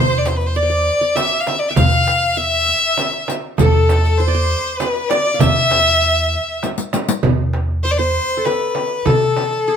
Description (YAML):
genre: Arabic maqam ensemble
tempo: 99 BPM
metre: 3/4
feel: straight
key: E maqam kurd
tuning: A4 = 439 Hz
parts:
  - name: bright violin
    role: melody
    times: 0.0-9.8 s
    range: G#4 to F5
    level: -17 LUFS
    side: left 2 dB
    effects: none
  - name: bright studio violin section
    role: second line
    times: 0.0-6.6 s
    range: A4 to F5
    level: -26 LUFS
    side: equal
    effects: none
  - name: qanun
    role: second line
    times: 0.0-9.8 s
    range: G#4 to G5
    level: -23 LUFS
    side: right 2 dB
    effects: none
  - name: upright bass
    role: bass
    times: 0.0-9.8 s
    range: E2 to E3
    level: -19 LUFS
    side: equal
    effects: none
  - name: darbuka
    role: percussion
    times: 0.3-9.6 s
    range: none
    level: -22 LUFS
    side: equal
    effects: none
  - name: frame drum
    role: percussion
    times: 0.3-9.5 s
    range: none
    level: -22 LUFS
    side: right 5 dB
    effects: none
  - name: riq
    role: percussion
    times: 0.3-7.2 s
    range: none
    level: -24 LUFS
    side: left 4 dB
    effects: none
room: light reverb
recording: band playing live in one room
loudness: -14 LUFS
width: side -8 dB against mid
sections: 0.0-7.2 A section; 7.2-9.8 B section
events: drum fill 6.6-7.2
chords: none